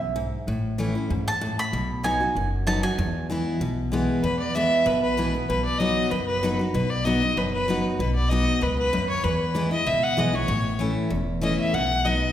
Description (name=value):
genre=bluegrass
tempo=192 BPM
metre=4/4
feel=straight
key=E major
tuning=A4 = 440 Hz
part: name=picked steel-string acoustic guitar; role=accompaniment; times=0.0-12.3 s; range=E2 to F#4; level=-25 LUFS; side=left 1 dB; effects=none
part: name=upright bass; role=bass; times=0.0-12.2 s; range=E1 to E2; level=-29 LUFS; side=equal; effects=none
part: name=mandolin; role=melody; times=1.3-3.3 s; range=G#5 to B5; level=-27 LUFS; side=right 2 dB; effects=none
part: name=clear fiddle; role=second line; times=4.2-12.3 s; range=B4 to F#5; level=-24 LUFS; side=equal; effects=none
room=wet recital hall reverb, RT60 1.5 s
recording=recorded in a church or concert hall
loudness=-22 LUFS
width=side -11 dB against mid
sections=0.0-4.2 A section; 4.2-12.3 B section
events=fiddle solo 4.2-12.3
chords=0.5 A; 1.7 B; 3.0 E; 5.5 B; 9.2 E; 10.5 A; 11.7 B